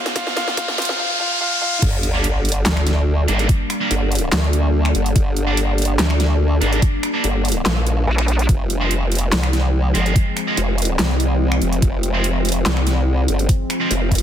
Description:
heavy wobble dubstep; 144 BPM; 4/4; half-time; G phrygian; A4 = 440 Hz
warm grand piano; melody; 0.0-1.8 s; F4 to F5; -26 LUFS; left 1 dB; dub echo
evolving wavetable pad; sustained chords; 0.0-14.2 s; F2 to C5; -25 LUFS; left 1 dB; phaser, built-in reverb, sidechain pumping
riser and sub drop; sound effects; 0.0-3.5 s; -22 LUFS; equal
dubstep drum kit; drums; 0.1-14.2 s; crash cymbal, finger snaps, handclaps, hi-hat, snare drum; -23 LUFS; equal; overdrive
electronic kick drum; drums; 0.2-14.2 s; -17 LUFS; equal; overdrive
formant-sweep wobble bass; bass; 1.8-14.2 s; F1 to D2; -18 LUFS; equal; chorus, overdrive
distorted electric guitar; stabs; 2.1-13.9 s; F3 to D4; -25 LUFS; right 3 dB; distortion, dub echo
vowel-sweep wobble bass; bass; 8.1-8.5 s; Bb1; -16 LUFS; equal; chorus, overdrive
light reverb; dense, heavily limited modern master, high-pass filter; -16 LUFS; side -10 dB against mid
0.0-1.8 A section; 1.8-14.2 B section
build-up 0.0-1.8; drum fill 0.0-1.0; riser 0.0-1.8; drop 1.8-14.2; impact 1.8-3.5
0.0 Fm; 1.8 Gm; 8.5 Fm

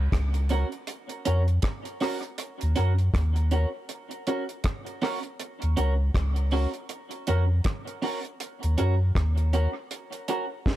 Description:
dub reggae; 80 BPM; 4/4; swing 59% on 16ths; Eb minor; A4 = 440 Hz
warm sub bass; bass; 0.0-9.7 s; Db2 to Gb2; -23 LUFS; equal
deep reggae drum kit; drums; 0.1-10.8 s; hi-hat, kick drum, rim click, snare drum; -30 LUFS; equal
clean electric guitar; accompaniment; 0.5-10.5 s; Db4 to Bb4; -31 LUFS; right 2 dB; wide subtle chorus, high-pass filter, dub echo
small room ambience; echo-heavy mix; -24 LUFS; side -14 dB against mid
0.0-10.8 A section
0.0 Ebm7

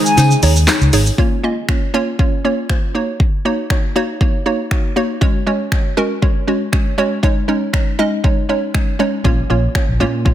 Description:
dance-pop; 119 BPM; 4/4; straight; Bb minor; A4 = 440 Hz
hollow square pluck; accompaniment; 0.0-10.3 s; Ab3 to Eb5; -18 LUFS; right 1 dB; chorus, sidechain pumping
airy breathy pad; sustained chords; 0.0-1.2 s; Db3 to Ab4; -23 LUFS; left 2 dB; chorus, phaser, sidechain pumping
deep house drum kit; drums; 0.1-10.3 s; finger snaps, handclaps, hi-hat, kick drum, shaker, snare drum; -16 LUFS; equal
vintage muted fingered electric bass; bass; 0.2-1.1, 9.2-10.3 s; Ab1 to Db3; -14 LUFS; equal; sidechain pumping
tambourine; percussion; 0.2-1.2 s; -30 LUFS; left 8 dB
light reverb; dense, heavily limited modern master; -14 LUFS; side -12 dB against mid
0.0-1.2 A section; 1.2-10.3 B section
drop 0.0-1.2; kick muted 0.2-1.2
0.0 Dbsus2; 1.2 Bbm; 2.9 Ebm7; 5.2 Gbsus2; 7.2 Dbsus2; 9.2 Bbm

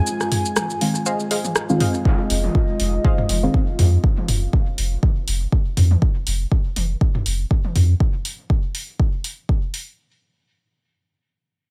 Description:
dub techno; 121 BPM; 4/4; swing 56% on 16ths; F minor; A4 = 442 Hz
dark analog pad; sustained chords; 0.0-6.0 s; Ab3 to Ab5; -29 LUFS; equal; chorus, sidechain pumping
deep house drum kit; drums; 0.1-9.8 s; hi-hat, rim click, shaker; -28 LUFS; equal
electronic toms; percussion; 0.3-7.9 s; -29 LUFS; equal; overdrive, sidechain pumping on toms, dub echo
deep mellow chord stab; stabs; 0.8-3.5 s; Eb3 to F4; -28 LUFS; equal; chorus, phaser, dub echo
warbly dusty pluck; riff; 1.1-3.2 s; Ab4 to F5; -32 LUFS; equal; chorus, sidechain pumping, dub echo
electronic kick drum; drums; 2.1-9.6 s; -20 LUFS; equal
soft dub sub bass; bass; 2.3-7.9 s; F1 to F2; -20 LUFS; equal; sidechain pumping
little or no reverb; -20 LUFS; mono
0.0-2.1 A section; 2.1-10.0 B section
break 0.1-2.1
0.0 Fm7

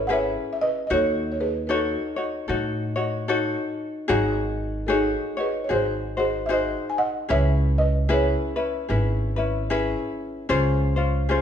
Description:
Hawaiian; 75 BPM; 4/4; swing 60% on 8ths; C# minor; A4 = 440 Hz
buzzing marimba with soft mallets; melody; 0.0-8.9 s; D#4 to G#5; -25 LUFS; right 1 dB
ukulele; accompaniment; 0.0-11.4 s; C#4 to C#5; -25 LUFS; left 3 dB
upright bass; bass; 0.0-11.4 s; G#1 to A2; -25 LUFS; right 1 dB
moderate recital hall reverb, RT60 1.5 s; recorded in a church or concert hall, nothing above 10.4 kHz; -22 LUFS; side -8 dB against mid
0.0-10.5 A section
0.0 C#m7; 0.9 D#m7b5; 4.1 G#7sus4; 5.7 G#7; 7.3 C#m7; 10.5 Dbmaj7

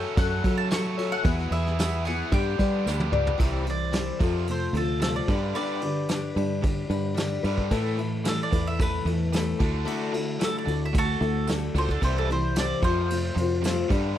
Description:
folk rock and heartland rock; 111 BPM; 4/4; straight; A4 = 439 Hz
picked steel-string acoustic guitar; accompaniment; 0.0-14.2 s; A2 to E5; -30 LUFS; left 7 dB
biting overdriven guitar; riff; 0.0-14.2 s; E2 to A4; -33 LUFS; right 2 dB; spring reverb
fingered electric bass; bass; 0.0-14.1 s; C2 to G3; -27 LUFS; right 1 dB
mandolin; melody; 0.2-13.9 s; F#4 to C#6; -32 LUFS; right 1 dB; slapback echo
soft brush drum kit; drums; 0.2-14.0 s; crash cymbal, kick drum, ride cymbal, snare drum, toms; -29 LUFS; right 1 dB
tambourine; percussion; 0.7-13.8 s; -42 LUFS; right 18 dB
little or no reverb; dry, close 1970s-style studio recording; -23 LUFS; side -11 dB against mid
0.0-3.4 A section; 3.4-14.2 B section
drum fill 2.9-3.4; mandolin solo 3.4-14.2
0.0 F#m; 1.2 Eadd9; 2.3 G; 3.4 C; 4.2 F; 5.3 G; 7.7 Asus2; 9.6 Dadd9; 12.0 C; 12.8 F

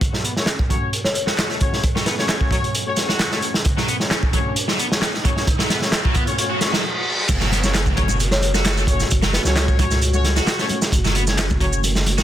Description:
breakbeat, breaks; 132 BPM; 4/4; straight; F# minor; A4 = 439 Hz
dark analog pad; sustained chords; 0.0-12.2 s; F#3 to A4; -33 LUFS; left 1 dB; chorus, vintage 12-bit sampler grit, sidechain pumping
crunchy breakbeat drum kit; drums; 0.0-12.2 s; crash cymbal, hi-hat, kick drum, snare drum; -19 LUFS; right 1 dB
riser, reverse cymbal and downlifter; sound effects; 2.8-10.9 s; -29 LUFS; equal
distorted electric guitar; riff; 0.1-12.2 s; F#3 to F#4; -27 LUFS; equal; overdrive, low-pass filter, ping-pong delay
warm horn section; stabs; 0.4-11.8 s; A3 to C#5; -27 LUFS; left 4 dB; vintage 12-bit sampler grit, low-pass filter, ping-pong delay
electronic handclaps and shaker; drums; 0.5-12.2 s; -28 LUFS; right 1 dB
folk marimba with medium hard mallets; melody; 1.0-2.5, 8.3-9.8 s; B4 to C#5; -28 LUFS; left 3 dB; AM radio sound, vintage 12-bit sampler grit, low-pass filter, ping-pong delay
saturated sub bass; bass; 7.3-12.2 s; F#1 to C#2; -21 LUFS; right 1 dB; tube saturation
congas; percussion; 7.3-12.2 s; -31 LUFS; left 4 dB
light reverb, studio ambience; dense, heavily limited modern master; -17 LUFS; side -12 dB against mid
0.0-7.3 A section; 7.3-12.2 B section
build-up 0.0-7.3; filter sweep on distorted electric guitar 0.0-7.3; riser 2.8-6.8; reverse cymbal 6.4-7.3; stop 6.8-7.3; drop 7.3-12.2
0.0 F#m

